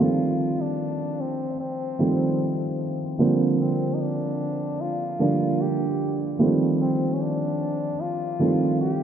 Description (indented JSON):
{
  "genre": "R&B",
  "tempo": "75 BPM",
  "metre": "4/4",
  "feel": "straight",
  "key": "unclear",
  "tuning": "A4 = 440 Hz",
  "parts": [
    { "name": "stopped French horn", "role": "melody", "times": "0.0-9.0 s", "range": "C4 to G4", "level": "-30 LUFS", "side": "left 2 dB", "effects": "diffuse ambient delay" },
    { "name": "felt-muted upright piano", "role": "accompaniment", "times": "0.0-9.0 s", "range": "D3 to D4", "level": "-22 LUFS", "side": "right 2 dB", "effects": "none" }
  ],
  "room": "wet cathedral reverb, RT60 4.8 s",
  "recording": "dreamy mix soaked in reverb, low-pass filter",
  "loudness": "-22 LUFS",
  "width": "side -8 dB against mid",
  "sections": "0.0-9.0 A section",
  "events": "none",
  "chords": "0.0 F7; 3.2 Bb69; 6.4 F7"
}